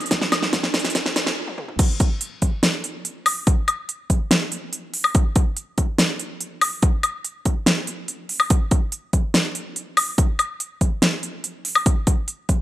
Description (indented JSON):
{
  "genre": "future bass",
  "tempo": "143 BPM",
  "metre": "4/4",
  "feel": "half-time",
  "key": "none",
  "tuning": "none",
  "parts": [
    { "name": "big-room dance drum kit", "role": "drums", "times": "0.0-12.6 s", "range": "crash cymbal, hi-hat, snare drum, toms, woodblock", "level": "-20 LUFS", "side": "equal", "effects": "none" },
    { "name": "electronic kick drum", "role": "drums", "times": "0.1-12.6 s", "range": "none", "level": "-18 LUFS", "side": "equal", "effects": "overdrive" }
  ],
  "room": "light reverb",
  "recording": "high-pass filter",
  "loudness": "-19 LUFS",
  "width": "side -15 dB against mid",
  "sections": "0.0-1.8 A section; 1.8-12.6 B section",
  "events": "build-up 0.0-1.8; drum fill 0.0-1.4, 1.5-1.8; stop 1.4-1.8; drop 1.8-12.6",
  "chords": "none",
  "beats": "| 0.11 0.53 0.95 1.37 | 1.79 2.21 2.63 3.05 | 3.47 3.89 4.31 4.73 | 5.15 5.57 5.99 6.41 | 6.83 7.24 7.66 8.08 | 8.50 8.92 9.34 9.76 | 10.18 10.60 11.02 11.44 | 11.86 12.28"
}